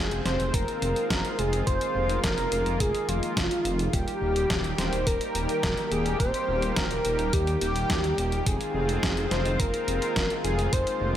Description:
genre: synthwave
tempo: 106 BPM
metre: 4/4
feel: straight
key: F minor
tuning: A4 = 440 Hz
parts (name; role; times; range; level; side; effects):
- wide unison lead; melody; 0.0-11.2 s; F4 to C5; -28 LUFS; equal; cassette tape, digital delay
- lush unison pad; sustained chords; 0.0-11.2 s; Eb3 to G4; -32 LUFS; equal; chorus, sidechain pumping
- dark detuned saw bass; bass; 0.0-11.2 s; Eb1 to Eb2; -29 LUFS; equal; sidechain pumping
- clean 12-bit digital drum machine; drums; 0.1-11.0 s; hi-hat, snare drum; -31 LUFS; equal; none
- electronic kick drum; drums; 0.5-10.8 s; none; -30 LUFS; equal; none
room: light reverb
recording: none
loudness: -24 LUFS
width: side -11 dB against mid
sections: 0.0-11.2 A section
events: none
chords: 0.0 Fm7; 3.9 Eb; 8.5 Fm7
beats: 0.54 1.10 | 1.67 2.24 2.80 3.37 | 3.94 4.50 5.07 5.63 | 6.20 6.76 7.33 7.90 | 8.46 9.03 9.60 10.16 | 10.73

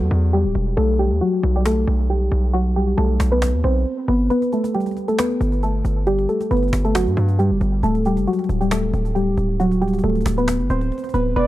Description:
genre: hip hop, trap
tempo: 136 BPM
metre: 4/4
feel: half-time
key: unclear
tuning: A4 = 439 Hz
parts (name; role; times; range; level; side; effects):
- soft round pluck; melody; 0.0-11.5 s; F#3 to C5; -20 LUFS; equal; chorus, low-pass filter, tape echo
- hard-hitting 808-style bass; bass; 0.0-11.5 s; D1 to G2; -20 LUFS; equal; none
- cajon; drums; 1.7-11.2 s; none; -29 LUFS; equal; none
- gliding portamento lead; second line; 11.4-11.5 s; D5; -20 LUFS; right 4 dB; chorus
room: little or no reverb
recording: dark, warm production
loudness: -17 LUFS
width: side -15 dB against mid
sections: 0.0-11.5 A section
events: break 0.0-4.3; filter sweep on synth pluck 0.0-11.4; kick muted 4.3-5.2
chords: 0.0 Em7; 0.8 B7(no3); 4.3 Gmaj7; 7.8 D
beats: 0.33 | 0.77 1.22 1.66 2.10 | 2.54 2.98 3.42 3.86 | 4.30 4.74 5.18 5.63 | 6.07 6.51 6.95 7.39 | 7.83 8.27 8.71 9.16 | 9.60 10.04 10.48 10.92 | 11.36

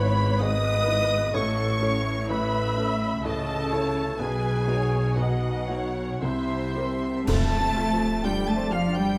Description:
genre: cinematic, emotional film score for orchestra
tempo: 56-64 BPM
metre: 3/4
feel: rubato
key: unclear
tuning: A4 = 440 Hz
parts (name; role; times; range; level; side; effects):
- clear studio violin section; melody; 0.0-9.2 s; E5 to A6; -36 LUFS; equal; none
- mellow clarinet; second line; 0.0-9.2 s; E4 to D#5; -33 LUFS; equal; none
- rich studio violin section; second line; 0.0-9.2 s; C5 to D#6; -37 LUFS; equal; none
- felt-muted upright piano; accompaniment; 0.0-9.2 s; G#1 to C5; -34 LUFS; equal; none
- warm studio viola section; accompaniment; 0.0-8.8 s; C4 to E5; -37 LUFS; equal; none
- warm studio cello section; bass; 0.0-9.2 s; G#2 to A3; -33 LUFS; equal; none
- warm studio double bass section; bass; 0.0-9.1 s; G#1 to F2; -31 LUFS; equal; none
- small flute group; second line; 6.2-9.2 s; C5 to A5; -35 LUFS; equal; none
- dark French horn section; sustained chords; 6.2-9.2 s; C3 to A3; -32 LUFS; equal; none
- clash cymbals and concert bass drum; percussion; 7.3-9.2 s; none; -34 LUFS; equal; none
- timpani; percussion; 7.3-8.7 s; F2; -34 LUFS; equal; none
room: moderate scoring stage reverb, RT60 1.6 s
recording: close, detailed microphones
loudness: -25 LUFS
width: mono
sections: 0.0-7.3 A section; 7.3-9.2 B section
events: band accent 7.3-8.2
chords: 0.0 E/G#; 1.3 A; 4.2 B; 6.2 C7; 7.3 F6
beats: 0.41 | 1.35 2.30 3.25 | 4.20 5.17 6.22 | 7.28 8.24

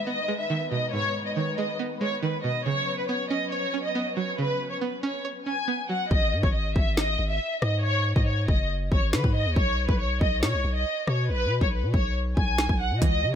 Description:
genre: hip hop, drill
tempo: 139 BPM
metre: 4/4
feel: half-time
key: G# minor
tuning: A4 = 441 Hz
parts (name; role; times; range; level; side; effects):
- rich studio violin section; melody; 0.0-13.3 s; B4 to G#5; -28 LUFS; equal; low-pass filter
- string-like resonator pluck; accompaniment; 0.0-6.1, 13.0-13.4 s; G#2 to C#5; -30 LUFS; right 5 dB; chorus, low-pass filter
- dark symphonic string section; sustained chords; 0.0-6.1 s; D#3 to B4; -35 LUFS; left 4 dB; none
- long sustained 808-style bass; bass; 6.1-13.3 s; F#1 to D#3; -26 LUFS; equal; none
- drill drum kit; drums; 6.1-13.1 s; hi-hat, kick drum, rim click, snare drum; -24 LUFS; equal; none
room: digital ambience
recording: none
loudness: -23 LUFS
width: side -9 dB against mid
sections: 0.0-6.1 A section; 6.1-13.4 B section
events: hi-hats muted 6.1-13.0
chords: 0.0 G#m; 2.7 Bsus2; 6.1 G#5; 9.6 Bsus2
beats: 0.07 0.50 | 0.93 1.36 1.79 2.23 | 2.66 3.09 3.52 3.95 | 4.38 4.82 5.25 5.68 | 6.11 6.54 6.97 7.41 | 7.84 8.27 8.70 9.13 | 9.56 9.99 10.43 10.86 | 11.29 11.72 12.15 12.59 | 13.02

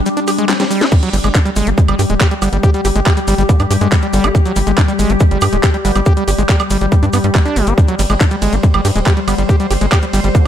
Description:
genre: psychedelic trance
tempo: 140 BPM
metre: 4/4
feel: straight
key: unclear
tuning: A4 = 440 Hz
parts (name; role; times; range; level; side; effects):
- evolving wavetable pad; sustained chords; 0.0-10.5 s; G3 to C5; -20 LUFS; left 3 dB; chorus, built-in reverb, sidechain pumping
- overdriven acid bass; riff; 0.1-10.4 s; F#3 to G4; -18 LUFS; equal; distortion, auto-pan, vintage 12-bit sampler grit, sidechain pumping, ping-pong delay
- garage drum kit; drums; 0.1-10.4 s; crash cymbal, handclaps, hi-hat, ride cymbal, snare drum, woodblock; -21 LUFS; right 2 dB; small room ambience
- maracas; percussion; 0.1-10.4 s; none; -30 LUFS; left 2 dB; none
- electronic kick drum; drums; 0.9-10.4 s; none; -11 LUFS; equal; small room ambience
- tight sequencer bass; bass; 1.1-10.3 s; D1 to G2; -16 LUFS; equal; none
- resonant blip pluck; second line; 2.4-10.5 s; D3 to B3; -30 LUFS; right 2 dB; none
room: light reverb, digital ambience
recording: none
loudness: -11 LUFS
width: side -10 dB against mid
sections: 0.0-10.5 A section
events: break 0.1-0.9; drum fill 0.5-0.9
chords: 0.0 G5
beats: 0.06 0.49 | 0.92 1.35 1.78 2.21 | 2.63 3.06 3.49 3.92 | 4.35 4.78 5.21 5.63 | 6.06 6.49 6.92 7.35 | 7.78 8.21 8.63 9.06 | 9.49 9.92 10.35

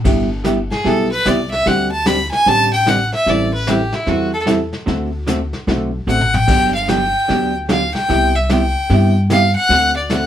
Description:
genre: country, western swing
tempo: 149 BPM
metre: 4/4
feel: swing 64% on 8ths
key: G major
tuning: A4 = 440 Hz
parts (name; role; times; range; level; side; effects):
- vintage hollow-body jazz guitar; accompaniment; 0.0-10.2 s; C3 to A4; -18 LUFS; right 1 dB; none
- vintage brush drum kit; drums; 0.0-10.3 s; brushed snare drum, crash cymbal, hi-hat, kick drum, snare drum, toms; -21 LUFS; left 1 dB; none
- upright bass; bass; 0.1-10.3 s; G1 to G2; -20 LUFS; equal; none
- clear fiddle; melody; 0.7-10.3 s; E4 to B5; -16 LUFS; equal; none
room: moderate studio ambience, RT60 0.5 s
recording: band playing live in one room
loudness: -13 LUFS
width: side -10 dB against mid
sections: 0.0-10.3 A section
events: fiddle solo 0.0-10.3; drum fill 6.1-6.5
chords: 0.0 G6; 1.7 D7sus4; 3.3 Am7; 4.9 D7; 6.5 Gmaj7; 8.1 Cmaj7; 9.7 D7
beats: | 0.05 0.45 0.85 1.25 | 1.66 2.06 2.46 2.86 | 3.26 3.67 4.07 4.47 | 4.87 5.27 5.68 6.08 | 6.48 6.88 7.29 7.69 | 8.09 8.49 8.89 9.30 | 9.70 10.10

